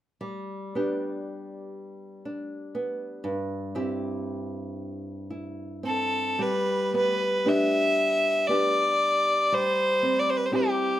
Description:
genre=celtic folk, Celtic slow air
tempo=58 BPM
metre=3/4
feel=uneven beats, rubato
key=G major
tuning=A4 = 441 Hz
part: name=nylon-string guitar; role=accompaniment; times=0.2-11.0 s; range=G2 to G4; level=-29 LUFS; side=equal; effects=none
part: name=clear fiddle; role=melody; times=5.9-11.0 s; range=G4 to E5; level=-23 LUFS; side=left 1 dB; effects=none
room=wet studio reverb, RT60 0.6 s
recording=rough home demo mix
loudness=-23 LUFS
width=side -13 dB against mid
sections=0.2-6.4 A section; 6.4-11.0 B section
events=none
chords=0.2 G; 3.2 C/G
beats=| 0.21 1.27 2.27 | 3.25 4.26 5.31 | 6.39 7.47 8.50 | 9.54 10.55

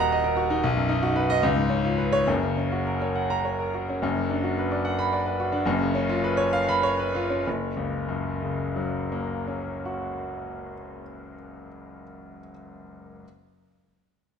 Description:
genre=classical, virtuoso piano study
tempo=62-80 BPM (dotted quarters)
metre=6/8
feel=rubato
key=F# major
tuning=A4 = 440 Hz
part: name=clear grand piano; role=solo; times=0.0-13.3 s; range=D#1 to B5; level=-24 LUFS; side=equal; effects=none
room=moderate recital hall reverb, RT60 1.6 s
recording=none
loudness=-23 LUFS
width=side -7 dB against mid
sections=0.0-4.0 A section; 4.0-7.5 B section; 7.5-11.0 C section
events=slowing down 3.2-7.5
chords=0.0 D#m; 0.6 B; 1.4 C#7; 2.3 F#; 4.0 Bm/F#; 5.7 C#7/F#; 7.5 F#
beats=| 0.64 1.44 | 2.29 3.17 | 4.03 4.85 | 5.66 6.52 | 7.45 8.36 | 9.26 10.15

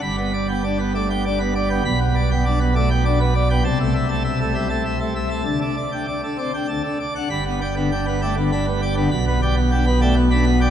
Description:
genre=classical, organ toccata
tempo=99 BPM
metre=3/4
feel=straight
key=G major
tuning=A4 = 440 Hz
part: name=pipe organ, plenum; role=solo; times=0.0-10.7 s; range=G1 to B5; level=-18 LUFS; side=equal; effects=none
room=wet cathedral reverb, RT60 5.1 s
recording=minimal, uncompressed stereo recording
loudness=-18 LUFS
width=side -9 dB against mid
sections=0.0-7.3 A section; 7.3-10.7 A section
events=none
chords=0.0 G; 1.9 G/B; 3.6 Am/C; 5.5 Dsus4; 6.7 D; 7.3 G; 9.1 G/B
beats=| 0.03 0.64 1.25 | 1.85 2.45 3.05 | 3.65 4.25 4.85 | 5.46 6.07 6.69 | 7.30 7.91 8.52 | 9.12 9.72 10.32

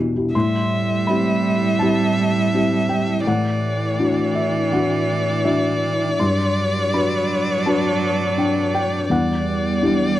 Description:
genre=neoclassical piano and strings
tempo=82 BPM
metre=4/4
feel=rubato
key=unclear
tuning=A4 = 438 Hz
part: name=felt-muted upright piano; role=accompaniment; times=0.0-10.2 s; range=E2 to C6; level=-20 LUFS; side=left 2 dB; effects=none
part: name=rich violin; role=melody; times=0.3-10.2 s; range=D5 to E5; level=-23 LUFS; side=left 2 dB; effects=none
part: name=clear cello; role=second line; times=0.3-10.2 s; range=E3 to G3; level=-24 LUFS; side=right 6 dB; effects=none
room=small room ambience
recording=dry, close 1970s-style studio recording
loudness=-17 LUFS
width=side -13 dB against mid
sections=0.3-10.2 A section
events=none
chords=0.3 Am7; 3.3 Dadd9/A; 6.2 Gmaj7; 9.1 Em7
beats=| 0.34 1.08 1.80 2.53 | 3.26 3.99 4.72 5.45 | 6.20 6.93 7.65 8.37 | 9.10 9.82

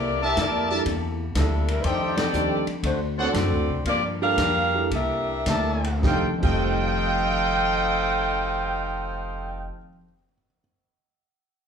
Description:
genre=jazz, big band swing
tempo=104-122 BPM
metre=4/4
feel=swing 68% on 8ths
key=F mixolydian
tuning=A4 = 440 Hz
part: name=mellow saxophone section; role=melody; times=0.0-9.7 s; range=G3 to F5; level=-26 LUFS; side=equal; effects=none
part: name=vintage hollow-body jazz guitar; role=accompaniment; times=0.0-10.0 s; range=F2 to A4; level=-33 LUFS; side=left 2 dB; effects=none
part: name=upright bass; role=bass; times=0.0-9.7 s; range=F1 to G2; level=-28 LUFS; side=equal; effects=none
part: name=clear trumpet section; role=stabs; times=0.2-9.7 s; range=Eb4 to A5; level=-27 LUFS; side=right 1 dB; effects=none
part: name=vintage drum kit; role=drums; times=0.4-6.5 s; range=crash cymbal, hi-hat, kick drum, ride cymbal, snare drum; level=-30 LUFS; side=equal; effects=none
part: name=warm baby grand piano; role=accompaniment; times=0.7-10.6 s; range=F2 to C7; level=-31 LUFS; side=right 4 dB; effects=none
room=wet large studio reverb, RT60 0.9 s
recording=band playing live in one room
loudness=-21 LUFS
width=side -7 dB against mid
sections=0.0-6.0 A section; 6.0-10.7 B section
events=slowing down 1.8-6.0; band accent 2.1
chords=0.0 C13; 1.8 F13; 2.8 D7; 3.9 Gm7; 4.9 C13; 6.0 F9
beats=0.37 0.86 1.35 | 1.84 2.34 2.83 3.34 | 3.85 4.38 4.91 5.46 | 6.04 6.62 7.20 7.78 | 8.36 8.94 9.52 10.09

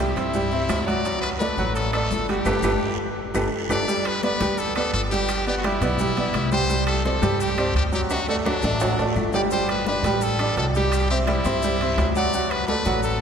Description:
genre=latin, salsa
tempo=170 BPM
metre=4/4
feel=straight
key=G major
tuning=A4 = 440 Hz
part: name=brilliant trumpet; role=melody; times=0.0-13.2 s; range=D4 to D5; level=-26 LUFS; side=left 3 dB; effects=none
part: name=bright upright piano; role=accompaniment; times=0.0-13.2 s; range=F#3 to G5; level=-24 LUFS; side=right 2 dB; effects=none
part: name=upright bass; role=bass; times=0.0-13.2 s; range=G1 to G2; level=-26 LUFS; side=equal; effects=none
part: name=congas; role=percussion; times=0.0-13.2 s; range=none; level=-32 LUFS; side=left 4 dB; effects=none
part: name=guiro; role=percussion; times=0.0-13.2 s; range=none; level=-41 LUFS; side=right 6 dB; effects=none
part: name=maracas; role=percussion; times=0.2-13.2 s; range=none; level=-42 LUFS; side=left 8 dB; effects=none
part: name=timbales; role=percussion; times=0.2-13.0 s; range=none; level=-32 LUFS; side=right 2 dB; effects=none
part: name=claves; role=percussion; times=0.7-12.7 s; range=none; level=-40 LUFS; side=left 2 dB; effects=none
room=wet cathedral reverb, RT60 4.5 s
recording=recorded in a church or concert hall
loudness=-20 LUFS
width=side -7 dB against mid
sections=0.0-3.9 A section; 3.9-13.2 A section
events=band accent 2.5-3.9; drum fill 2.8-3.9, 8.1-9.5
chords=0.0 C; 1.1 D; 2.5 Gadd9; 3.9 G; 5.3 Em7/G; 6.7 Csus2; 8.1 D; 9.5 Gsus2; 10.9 C; 12.3 D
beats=0.34 0.70 | 1.05 1.40 1.76 2.11 | 2.46 2.82 3.17 3.52 | 3.88 4.23 4.58 4.93 | 5.29 5.64 5.99 6.34 | 6.70 7.05 7.40 7.75 | 8.11 8.46 8.81 9.16 | 9.51 9.87 10.22 10.57 | 10.92 11.27 11.62 11.97 | 12.33 12.68 13.03

